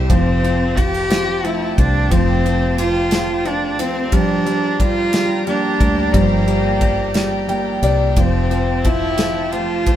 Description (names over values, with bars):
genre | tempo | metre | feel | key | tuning
six-eight pop ballad | 60 BPM (dotted quarters) | 6/8 | straight | F major | A4 = 436 Hz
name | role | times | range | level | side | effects
clear baby grand piano | accompaniment | 0.0-10.0 s | C3 to G5 | -22 LUFS | left 2 dB | none
warm studio string section | sustained chords | 0.0-10.0 s | G4 to Bb5 | -25 LUFS | left 1 dB | none
fingerpicked steel-string acoustic guitar | arpeggios | 0.0-10.0 s | F3 to G4 | -24 LUFS | right 3 dB | none
fingered electric bass | bass | 0.0-10.0 s | F1 to D2 | -21 LUFS | equal | none
warm cello | melody | 0.1-10.0 s | Bb3 to G4 | -20 LUFS | right 1 dB | none
modern studio drum kit | drums | 0.1-10.0 s | kick drum, ride cymbal, snare drum | -21 LUFS | equal | none
room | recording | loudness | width
moderate studio reverb, RT60 0.8 s | band playing live in one room | -15 LUFS | side -11 dB against mid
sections
0.0-10.0 A section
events
grand piano fill 7.2-8.2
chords
0.1 Fadd9; 4.1 Gm7; 8.2 Fadd9